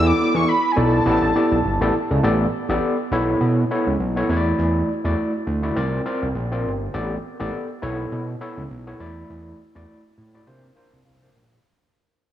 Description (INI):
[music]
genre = early-eighties boogie funk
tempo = 102 BPM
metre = 4/4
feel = swing 56% on 16ths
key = unclear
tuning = A4 = 440 Hz
[part]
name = fat analog lead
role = melody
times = 0.0-2.0 s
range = G#5 to D6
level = -23 LUFS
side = equal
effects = chorus, phaser, tape echo
[part]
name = overdriven tine electric piano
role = accompaniment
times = 0.0-11.6 s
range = A3 to Bb5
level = -22 LUFS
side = equal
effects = medium tremolo
[part]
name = fat analog bass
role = bass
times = 0.0-11.6 s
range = G1 to C3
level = -22 LUFS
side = right 1 dB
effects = none
[sound]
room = wet plate reverb, RT60 3.7 s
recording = dreamy mix soaked in reverb, small room ambience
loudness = -19 LUFS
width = side -11 dB against mid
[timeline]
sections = 0.0-2.2 A section; 2.2-11.6 B section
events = fade-out 2.2-11.6; tine electric piano fill 10.5-11.6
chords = 0.0 E9sus4; 1.1 A9sus4; 3.1 B9sus4; 4.3 E9sus4; 5.8 C9sus4; 6.9 A9sus4; 7.8 B9sus4; 9.0 E9sus4; 10.5 C9sus4